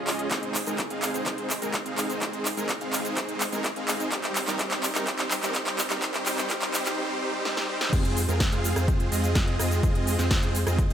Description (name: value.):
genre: EDM, festival progressive house.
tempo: 126 BPM.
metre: 4/4.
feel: straight.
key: F minor.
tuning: A4 = 440 Hz.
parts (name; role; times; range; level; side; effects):
supersaw chords; riff; 0.0-10.9 s; G3 to F5; -28 LUFS; right 1 dB; vintage 12-bit sampler grit, sidechain pumping, low-pass filter, dub echo.
big-room dance drum kit; drums; 0.1-10.9 s; crash cymbal, handclaps, hi-hat, rim click, shaker, snare drum; -28 LUFS; equal; none.
electronic kick drum; drums; 0.3-10.9 s; none; -27 LUFS; equal; high-pass filter on kick, high-pass filter on room.
saturated sub bass; bass; 7.9-10.9 s; F2; -27 LUFS; equal; sidechain pumping.
room: moderate huge ambient reverb, RT60 6.5 s.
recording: high-pass filter.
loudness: -24 LUFS.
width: side -9 dB against mid.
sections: 0.0-7.9 A section; 7.9-10.9 B section.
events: build-up 0.0-7.9; drum fill 0.0-7.0, 7.5-7.9; filter sweep on supersaw synth 0.0-7.9; drop 7.9-10.9.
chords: 0.3 Ab; 4.1 Eb; 7.9 Fm.